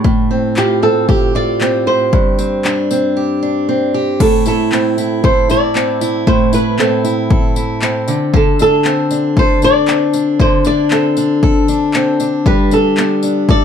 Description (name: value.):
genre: acoustic pop.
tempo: 116 BPM.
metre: 4/4.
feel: straight.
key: unclear.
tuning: A4 = 439 Hz.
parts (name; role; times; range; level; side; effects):
picked steel-string acoustic guitar; accompaniment; 0.0-13.6 s; G2 to A4; -14 LUFS; left 1 dB; none.
80s electronic pad drums; drums; 0.0-13.6 s; crash cymbal, handclaps, kick drum, tambourine; -16 LUFS; left 1 dB; overdrive.
flamenco guitar; melody; 0.6-13.6 s; G4 to D5; -16 LUFS; right 1 dB; none.
room: light reverb.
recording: dark, warm production.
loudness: -11 LUFS.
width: side -8 dB against mid.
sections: 0.0-4.2 A section; 4.2-13.6 B section.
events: none.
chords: 0.0 Fadd9/A; 2.1 Gsus4; 4.2 Am; 8.1 D5; 12.5 Gadd9.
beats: | 0.05 0.57 1.09 1.61 | 2.13 2.65 3.17 3.68 | 4.20 4.72 5.24 5.75 | 6.27 6.79 7.30 7.82 | 8.33 8.85 9.37 9.88 | 10.40 10.91 11.43 11.94 | 12.46 12.97 13.48.